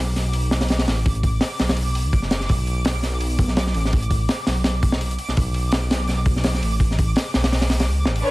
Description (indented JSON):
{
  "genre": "drum and bass, jungle",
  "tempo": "167 BPM",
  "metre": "4/4",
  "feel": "swing 53% on 16ths",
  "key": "B minor",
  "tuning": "A4 = 440 Hz",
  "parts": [
    { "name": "dark detuned saw bass", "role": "bass", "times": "0.0-8.2 s", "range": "F#1 to D2", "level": "-22 LUFS", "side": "equal", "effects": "none" },
    { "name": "twinkling granular texture", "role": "texture", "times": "0.0-8.3 s", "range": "D6 to F#6", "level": "-32 LUFS", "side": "right 1 dB", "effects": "built-in reverb" },
    { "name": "crunchy breakbeat drum kit", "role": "drums", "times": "0.2-8.2 s", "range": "hi-hat, kick drum, snare drum", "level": "-21 LUFS", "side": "equal", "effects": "none" },
    { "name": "clear symphonic string section", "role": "sustained chords", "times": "8.2-8.3 s", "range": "D4 to C#5", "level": "-19 LUFS", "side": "left 1 dB", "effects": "none" }
  ],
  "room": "studio ambience",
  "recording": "vinyl crackle",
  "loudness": "-18 LUFS",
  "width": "side -20 dB against mid",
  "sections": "0.0-8.2 A section",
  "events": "none",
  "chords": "0.0 Bm7",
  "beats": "0.34 0.70 | 1.06 1.42 1.77 2.13 | 2.49 2.85 3.21 3.57 | 3.93 4.29 4.65 5.01 | 5.37 5.73 6.09 6.45 | 6.80 7.16 7.52 7.88 | 8.24"
}